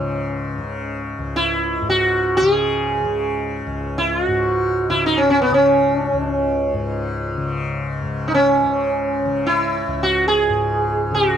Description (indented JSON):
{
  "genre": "indian classical",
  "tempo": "free time",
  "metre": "none",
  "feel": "none",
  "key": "unclear",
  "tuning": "A4 = 441 Hz",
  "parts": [
    { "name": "sitar", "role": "melody", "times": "0.0-11.4 s", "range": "B3 to G#4", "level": "-17 LUFS", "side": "right 1 dB", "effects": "none" },
    { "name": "tanpura", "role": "drone", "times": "0.0-11.4 s", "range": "C#2 to C#3", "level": "-24 LUFS", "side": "left 2 dB", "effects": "none" }
  ],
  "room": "light reverb",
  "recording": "dry, close 1970s-style studio recording",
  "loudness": "-17 LUFS",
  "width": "side -9 dB against mid",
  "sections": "0.0-8.0 A section; 8.0-11.4 A section",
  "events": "none",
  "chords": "none",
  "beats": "free time"
}